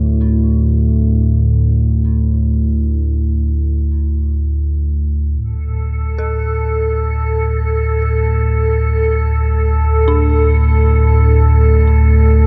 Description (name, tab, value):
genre	dark ambient drone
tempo	free time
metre	none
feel	none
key	unclear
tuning	A4 = 440 Hz
part	dark detuned synth bell	arpeggios	0.0-12.5 s	D4 to A4	-33 LUFS	equal	chorus, tape echo
part	deep rumbling drone	drone	0.0-12.5 s	D2 to A2	-15 LUFS	equal	built-in reverb
part	icy glass pad	texture	5.8-12.5 s	A4	-22 LUFS	equal	chorus, built-in reverb
room	light reverb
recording	cassette tape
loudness	-15 LUFS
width	mono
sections	0.0-5.4 A section; 5.4-12.5 B section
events	fade-in on synth bell 5.4-12.5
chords	0.0 Dsus2; 5.4 D5